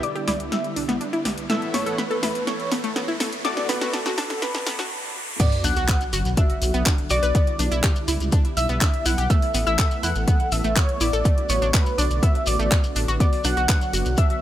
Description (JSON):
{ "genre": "progressive house", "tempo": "123 BPM", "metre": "4/4", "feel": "straight", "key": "B minor", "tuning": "A4 = 440 Hz", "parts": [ { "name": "warm velvety synth lead", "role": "melody", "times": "0.0-14.4 s", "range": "A4 to F#5", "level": "-28 LUFS", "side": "equal", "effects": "chorus, tape echo" }, { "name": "soft round pluck", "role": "second line", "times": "0.0-14.4 s", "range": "A5 to F#6", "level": "-32 LUFS", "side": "equal", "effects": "chorus, vintage 12-bit sampler grit, sidechain pumping, tape echo" }, { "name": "warm analog pad", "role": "sustained chords", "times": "0.0-14.4 s", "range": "D3 to A4", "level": "-32 LUFS", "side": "right 1 dB", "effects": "chorus, sidechain pumping" }, { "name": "deep house drum kit", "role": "drums", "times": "0.0-14.4 s", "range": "crash cymbal, handclaps, hi-hat, snare drum", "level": "-28 LUFS", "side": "equal", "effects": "overdrive" }, { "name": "riser and sub drop", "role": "sound effects", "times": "0.4-7.3 s", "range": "none", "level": "-33 LUFS", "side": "equal", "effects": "none" }, { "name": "analog pluck", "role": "arpeggios", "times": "0.2-14.2 s", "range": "A3 to B4", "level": "-30 LUFS", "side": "equal", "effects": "chorus, sidechain pumping, tape echo" }, { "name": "dark detuned saw bass", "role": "bass", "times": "0.3-14.2 s", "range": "F#1 to E2", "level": "-25 LUFS", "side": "equal", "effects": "sidechain pumping" }, { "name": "soft supersaw", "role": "stabs", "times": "1.5-3.9 s", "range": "A2 to F#5", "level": "-35 LUFS", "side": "left 2 dB", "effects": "none" }, { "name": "electronic kick drum", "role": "drums", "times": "5.4-14.3 s", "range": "none", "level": "-20 LUFS", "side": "equal", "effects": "none" }, { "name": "shekere", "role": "percussion", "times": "5.4-14.3 s", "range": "none", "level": "-32 LUFS", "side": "left 3 dB", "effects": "none" } ], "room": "light reverb, digital ambience", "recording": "high-pass filter", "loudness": "-19 LUFS", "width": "side -12 dB against mid", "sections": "0.0-5.4 A section; 5.4-14.4 B section", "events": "build-up 0.0-5.4; drum fill 0.0-4.9; filter sweep on synth arpeggio sound 0.0-5.4; filter sweep 0.0-5.4; riser 0.4-5.4; break 4.9-5.4; drop 5.4-14.4; impact 5.4-7.3", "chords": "0.0 Em7; 1.5 Asus2; 3.4 D6/A; 5.4 Bm; 7.3 Em7/B; 9.3 Asus2; 11.3 D6/A; 13.2 Bm", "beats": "0.03 0.52 1.01 | 1.50 1.98 2.47 2.96 | 3.45 3.94 4.42 4.91 | 5.40 5.89 6.37 6.86 | 7.35 7.84 8.32 8.81 | 9.30 9.79 10.28 10.76 | 11.25 11.74 12.23 12.71 | 13.20 13.69 14.18" }